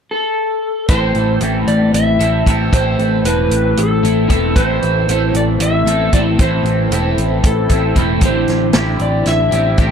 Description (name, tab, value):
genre	psychedelic rock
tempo	229 BPM (eighths)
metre	7/8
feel	straight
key	A minor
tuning	A4 = 440 Hz
part	electric slide guitar	melody	0.1-9.8 s	A4 to E5	-18 LUFS	equal	slapback echo
part	soft string machine	sustained chords	0.9-9.9 s	A3 to E4	-27 LUFS	right 2 dB	none
part	electric guitar at the edge of break-up	riff	0.9-9.9 s	A2 to A4	-17 LUFS	left 1 dB	phaser, double-tracked left and right
part	picked electric bass	bass	0.9-9.9 s	E1 to A1	-18 LUFS	equal	none
part	vintage drum kit	drums	0.9-9.9 s	hi-hat, kick drum, snare drum	-16 LUFS	equal	none
room	little or no reverb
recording	dry, close 1970s-style studio recording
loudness	-12 LUFS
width	side -7 dB against mid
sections	0.9-9.9 A section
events	none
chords	0.0 N.C.; 0.9 Am; 8.2 Cadd9